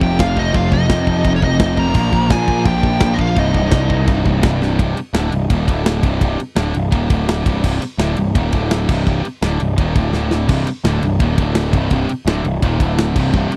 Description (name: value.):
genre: heavy metal.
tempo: 169 BPM.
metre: 4/4.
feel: straight.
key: C minor.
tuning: A4 = 440 Hz.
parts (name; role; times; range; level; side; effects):
nasal lead guitar with a parked wah; melody; 0.0-4.4 s; Db5 to Bb5; -25 LUFS; equal; overdrive, slapback echo.
high-gain lead guitar; second line; 0.0-4.5 s; Db4 to Bb4; -30 LUFS; equal; none.
distorted electric guitar; riff; 0.0-13.6 s; C2 to F3; -25 LUFS; equal; overdrive.
sludgy distorted guitar; riff; 0.0-4.8, 10.5-13.6 s; C2 to Bb3; -22 LUFS; equal; overdrive.
fuzz picked electric bass; bass; 0.0-13.5 s; C1 to Bb2; -21 LUFS; equal; overdrive.
tight metal drum kit; drums; 0.0-13.6 s; china cymbal, crash cymbal, kick drum, ride cymbal, snare drum; -19 LUFS; equal; none.
room: little or no reverb.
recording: dry, close 1970s-style studio recording.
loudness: -16 LUFS.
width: mono.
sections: 0.0-4.8 A section; 4.8-13.6 B section.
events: drum fill 4.6, 10.1-10.5.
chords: 0.0 F5; 2.0 Bb5; 3.4 Cm; 5.7 D5; 6.0 Cm; 7.1 D5; 7.5 Cm; 8.5 D5; 8.9 Cm; 10.1 D5; 10.5 Cm; 11.4 D5; 11.7 Cm; 12.8 D5.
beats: 0.18 | 0.54 0.89 1.25 1.60 | 1.96 2.31 2.67 3.02 | 3.38 3.73 4.08 4.44 | 4.80 5.15 5.51 5.86 | 6.22 6.57 6.93 7.29 | 7.64 8.00 8.35 8.71 | 9.06 9.42 9.78 10.13 | 10.49 10.85 11.20 11.56 | 11.91 12.27 12.63 12.98 | 13.34.